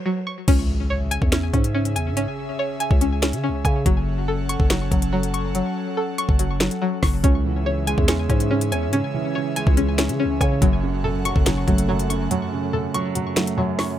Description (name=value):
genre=hip hop, drill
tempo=142 BPM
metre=4/4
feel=half-time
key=C# minor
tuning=A4 = 440 Hz
part: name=string-like resonator pluck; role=arpeggios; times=0.0-14.0 s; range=F#3 to C#6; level=-26 LUFS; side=left 1 dB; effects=chorus, phaser, low-pass filter, ping-pong delay
part: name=airy breathy pad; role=sustained chords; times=0.5-14.0 s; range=C#3 to F#5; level=-29 LUFS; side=left 1 dB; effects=chorus
part: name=growling 808-style bass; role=bass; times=0.5-12.3 s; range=F#1 to C#3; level=-24 LUFS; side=equal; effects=none
part: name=drill drum kit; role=drums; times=0.5-13.9 s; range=crash cymbal, finger snaps, hi-hat, kick drum, rim click, snare drum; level=-20 LUFS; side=equal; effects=none
part: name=impact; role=sound effects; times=0.5-2.2 s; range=none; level=-33 LUFS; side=equal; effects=none
part: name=dark baby grand piano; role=accompaniment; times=7.2-14.0 s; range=F#2 to C#5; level=-25 LUFS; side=right 4 dB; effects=low-pass filter
room=little or no reverb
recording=none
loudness=-19 LUFS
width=side -11 dB against mid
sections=0.5-14.0 A section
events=break 0.0-0.5, 12.3-14.0; riser 0.0-0.5; impact 0.5-2.2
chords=0.5 C#m; 3.9 F#m; 7.2 C#m; 10.6 F#m